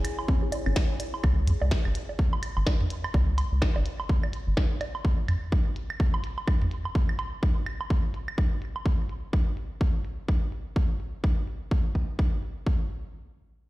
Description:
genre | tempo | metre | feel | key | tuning
minimal techno | 126 BPM | 4/4 | swing 59% on 16ths | C# minor | A4 = 440 Hz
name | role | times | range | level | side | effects
minimal click drum kit | drums | 0.0-12.5 s | hi-hat, snare drum | -36 LUFS | equal | low-pass filter on snare, low-pass filter on hats, low-pass filter on room
electronic claves, woodblock, bongos and toms | percussion | 0.0-8.8 s | none | -33 LUFS | right 2 dB | digital delay
warbly tape-like pad | texture | 0.0-1.2 s | E4 to G#5 | -38 LUFS | left 2 dB | chorus, built-in reverb, sidechain pumping
resonant blip pluck | riff | 0.3-0.7 s | C#4 to G#4 | -37 LUFS | left 3 dB | phaser, sidechain pumping, ping-pong delay
electronic kick drum | drums | 0.3-12.8 s | none | -25 LUFS | equal | overdrive
rubbery square bass | bass | 0.7-4.5 s | G#1 to C#2 | -25 LUFS | equal | sidechain pumping
room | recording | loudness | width
digital ambience | played on a big sound system in a bare room, stone room reverb | -25 LUFS | side -18 dB against mid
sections
0.0-12.7 A section; 12.7-13.7 B section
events
filter sweep on drum 0.0-12.7; filter sweep on analog synth bass 0.0-5.0; filter sweep on synth arpeggio sound 0.0-1.2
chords
0.0 C#m; 12.7 N.C.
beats
0.28 0.76 | 1.24 1.71 2.19 2.67 | 3.14 3.62 4.09 4.57 | 5.05 5.52 6.00 6.47 | 6.95 7.43 7.90 8.38 | 8.86 9.33 9.81 10.28 | 10.76 11.24 11.71 12.19 | 12.66

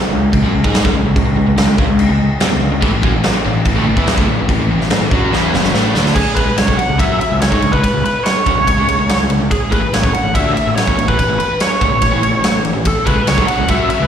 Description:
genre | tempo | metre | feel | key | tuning
hard rock | 144 BPM | 4/4 | straight | C# phrygian | A4 = 439 Hz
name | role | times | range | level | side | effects
overdriven semi-hollow guitar | riff | 0.0-14.1 s | F#2 to G#4 | -20 LUFS | left 9 dB | slapback echo
overdriven semi-hollow guitar | riff | 0.0-14.1 s | F#2 to G#4 | -20 LUFS | right 8 dB | spring reverb, slapback echo
fuzz picked electric bass | bass | 0.0-14.1 s | F#1 to G#2 | -19 LUFS | equal | overdrive
huge arena drum kit | drums | 0.3-14.0 s | crash cymbal, kick drum, ride cymbal, snare drum | -16 LUFS | equal | none
heavy high-gain guitar | riff | 2.8-6.2, 13.1-14.1 s | F#2 to F#4 | -22 LUFS | left 2 dB | distortion, slapback echo
bluesy overdriven lead guitar | melody | 6.2-14.1 s | G#4 to F#5 | -17 LUFS | right 1 dB | distortion, slapback echo, analog delay
room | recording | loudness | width
light reverb | live gig heard through the venue's PA, recital hall reverb | -12 LUFS | side -8 dB against mid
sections
0.0-6.2 A section; 6.2-14.1 B section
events
drum fill 5.3-6.2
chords
0.0 C#5; 2.8 A5; 6.2 C#5; 9.7 Aadd9; 13.1 C#m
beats
0.33 0.74 | 1.16 1.58 1.99 2.41 | 2.83 3.24 3.66 4.08 | 4.49 4.91 5.33 5.74 | 6.16 6.58 7.00 7.41 | 7.83 8.25 8.67 9.08 | 9.50 9.92 10.34 10.76 | 11.17 11.59 12.01 12.43 | 12.85 13.26 13.68

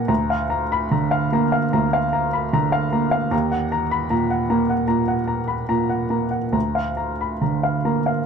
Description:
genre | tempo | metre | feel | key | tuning
neoclassical minimalist piano | 68-77 BPM | 4/4 | rubato | unclear | A4 = 440 Hz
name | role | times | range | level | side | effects
clear upright piano | solo | 0.0-8.3 s | D2 to Cb6 | -19 LUFS | equal | none
room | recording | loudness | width
light reverb | dark, warm production | -19 LUFS | side -6 dB against mid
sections
0.0-8.3 A section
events
none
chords
0.1 Bb/D; 3.3 Ebm; 6.5 Bb/D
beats
| 0.09 0.92 1.73 2.53 | 3.33 4.11 4.89 5.69 | 6.55 7.42

